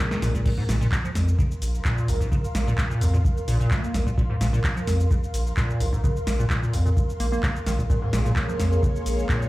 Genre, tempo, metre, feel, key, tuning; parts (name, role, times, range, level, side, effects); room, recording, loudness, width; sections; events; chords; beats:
acid house; 129 BPM; 4/4; straight; A4 = 440 Hz
string machine, full ensemble; sustained chords; 0.0-0.4, 7.9-9.5 s; Bb3 to Db5; -32 LUFS; left 2 dB; phaser, ensemble chorus, sidechain pumping
liquid acid bass; riff; 0.0-9.5 s; Bb1 to Bb3; -26 LUFS; equal; overdrive, analog chorus
punchy analog drum machine; drums; 0.0-9.5 s; crash cymbal, handclaps, hi-hat, shaker, snare drum; -30 LUFS; equal
round analog bass; bass; 0.2-9.2 s; Bb1 to F2; -24 LUFS; equal; tube saturation, sidechain pumping
electronic kick drum; drums; 0.3-9.4 s; -25 LUFS; equal
ethereal airy pad; texture; 1.2-9.5 s; Bb4 to C6; -33 LUFS; right 2 dB; ensemble chorus, built-in reverb, sidechain pumping
light reverb; played on a big sound system in a bare room, large studio reverb; -21 LUFS; side -18 dB against mid
0.5-9.5 A section
band accent 0.0; drop 0.5-9.5
0.5 Bbm7
| 0.46 0.92 1.39 1.85 | 2.32 2.78 3.25 3.71 | 4.18 4.64 5.11 5.57 | 6.04 6.50 6.97 7.43 | 7.90 8.36 8.83 9.29